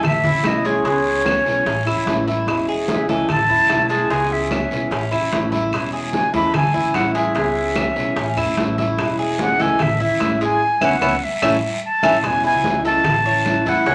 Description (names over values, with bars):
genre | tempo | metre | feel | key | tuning
latin, Cuban son and guajira | 148 BPM | 4/4 | straight | unclear | A4 = 440 Hz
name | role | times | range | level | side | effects
breathy concert flute | melody | 0.0-13.9 s | C#5 to B5 | -22 LUFS | equal | none
fingerpicked steel-string acoustic guitar | accompaniment | 0.0-13.9 s | B2 to G#4 | -27 LUFS | equal | none
Cuban tres | arpeggios | 0.0-13.9 s | G#3 to C#5 | -25 LUFS | equal | none
upright bass | bass | 0.0-13.9 s | E1 to E2 | -30 LUFS | equal | none
bongos | percussion | 0.0-13.9 s | none | -31 LUFS | equal | none
claves | percussion | 0.0-13.7 s | none | -31 LUFS | equal | none
congas | percussion | 0.0-13.9 s | none | -29 LUFS | equal | none
guiro | percussion | 0.0-13.9 s | none | -36 LUFS | equal | none
room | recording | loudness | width
wet studio ambience, RT60 0.5 s | none | -19 LUFS | mono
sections
0.0-12.2 A section; 12.2-13.9 B section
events
band accent 10.6-12.2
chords
0.0 A; 0.9 C#m7; 1.7 A; 2.5 E6; 3.3 A; 4.1 C#m7; 4.9 A; 5.7 E6; 6.5 A; 7.4 C#m7; 8.2 A; 9.0 E6; 9.8 A; 10.6 C#m7; 11.4 A; 12.2 E6; 13.1 A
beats
0.04 0.45 | 0.85 1.26 1.67 2.07 | 2.48 2.88 3.29 3.70 | 4.10 4.51 4.92 5.32 | 5.73 6.13 6.54 6.95 | 7.36 7.76 8.17 8.58 | 8.98 9.39 9.80 10.20 | 10.61 11.02 11.43 11.83 | 12.24 12.64 13.05 13.46 | 13.87